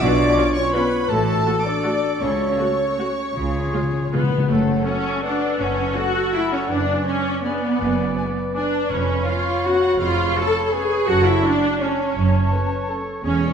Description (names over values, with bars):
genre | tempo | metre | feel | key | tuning
classical, orchestral ballroom waltz | 149-179 BPM | 3/4 | rubato | F# minor | A4 = 440 Hz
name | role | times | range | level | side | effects
rich chamber violin section | melody | 0.0-13.0 s | A4 to D6 | -32 LUFS | equal | none
mellow clarinet | second line | 0.0-13.5 s | E#4 to D5 | -29 LUFS | left 4 dB | none
mellow hollow small flute group | second line | 0.0-13.5 s | A4 to B5 | -30 LUFS | left 1 dB | none
rich studio violin section | second line | 0.0-13.5 s | A4 to A5 | -31 LUFS | left 4 dB | none
warm oboe | second line | 0.0-13.5 s | G#4 to D5 | -30 LUFS | right 1 dB | none
mellow French horn section | sustained chords | 0.0-13.5 s | G#3 to F#4 | -29 LUFS | left 2 dB | none
dark trumpet section | stabs | 0.0-4.1 s | A4 to D5 | -25 LUFS | right 1 dB | none
rich studio double bass section | bass | 0.0-13.5 s | E1 to C#2 | -27 LUFS | right 3 dB | none
warm studio cello section | bass | 0.0-13.5 s | E2 to C#3 | -26 LUFS | right 2 dB | none
rich studio viola section | accompaniment | 0.4-13.5 s | G#3 to A4 | -22 LUFS | equal | none
timpani | percussion | 3.4-4.4 s | C#3 | -23 LUFS | left 3 dB | none
room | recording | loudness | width
wet scoring stage reverb, RT60 1.7 s | dark, warm production | -18 LUFS | side -7 dB against mid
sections
0.0-4.5 A section; 4.5-13.5 B section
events
timpani fill 3.4-4.5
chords
0.0 C#7/B; 1.1 F#m/A; 2.2 F#m/C#; 3.4 C#; 4.5 F#m; 6.7 G#m7b5/F#; 8.9 C#7/E#; 11.1 F#m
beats
| 0.01 0.37 0.74 | 1.10 1.46 1.84 | 2.21 2.59 2.99 | 3.36 3.74 4.13 | 4.50 4.87 5.25 | 5.60 5.97 6.35 | 6.70 7.07 7.45 | 7.81 8.17 8.54 | 8.90 9.26 9.64 | 9.99 10.35 10.73 | 11.08 11.43 11.81 | 12.16 12.52 12.89 | 13.24